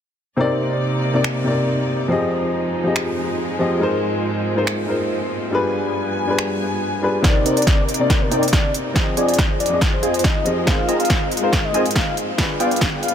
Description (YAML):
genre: future bass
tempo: 140 BPM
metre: 4/4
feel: half-time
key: C minor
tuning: A4 = 440 Hz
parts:
  - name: warm baby grand piano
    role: accompaniment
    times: 0.4-13.1 s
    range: C3 to Eb5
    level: -21 LUFS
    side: left 2 dB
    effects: sidechain pumping, tape echo
  - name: rich studio string section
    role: sustained chords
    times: 0.4-13.1 s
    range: F2 to Ab5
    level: -26 LUFS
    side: right 1 dB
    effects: sidechain pumping, low-pass filter
  - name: big-room dance drum kit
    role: drums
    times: 1.2-13.1 s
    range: finger snaps, hi-hat, snare drum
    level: -24 LUFS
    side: right 1 dB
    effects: soft clipping on snare, high-pass filter on snare, high-pass filter on hats, high-pass filter on room
  - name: soft octave-layered synth lead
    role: melody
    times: 7.2-13.1 s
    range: Bb4 to F5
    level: -24 LUFS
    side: left 3 dB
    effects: chorus, tremolo, sidechain pumping, tape echo
  - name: supersaw stab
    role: riff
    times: 7.2-13.1 s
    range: B3 to Bb5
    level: -23 LUFS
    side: right 1 dB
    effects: sidechain pumping, low-pass filter
  - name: electronic kick drum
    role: drums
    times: 7.2-12.9 s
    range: none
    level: -19 LUFS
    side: equal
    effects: none
room: light reverb, digital ambience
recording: dense, heavily limited modern master, high-pass filter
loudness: -17 LUFS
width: side -8 dB against mid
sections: 0.4-7.2 A section; 7.2-13.1 B section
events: build-up 7.2-13.1; drum fill 7.2-13.1; filter sweep on supersaw synth 7.2-13.1; filter sweep on string section 7.2-13.1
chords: 0.4 Cm9; 2.1 Fm7; 3.8 Ab6; 5.5 G7b9; 7.2 Cm9; 9.0 Fm7; 10.7 Ab6; 12.4 G7b9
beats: | 0.39 0.81 1.24 1.67 | 2.10 2.53 2.96 3.39 | 3.81 4.24 4.67 5.10 | 5.53 5.96 6.39 6.82 | 7.24 7.67 8.10 8.53 | 8.96 9.39 9.81 10.24 | 10.67 11.10 11.53 11.96 | 12.39 12.81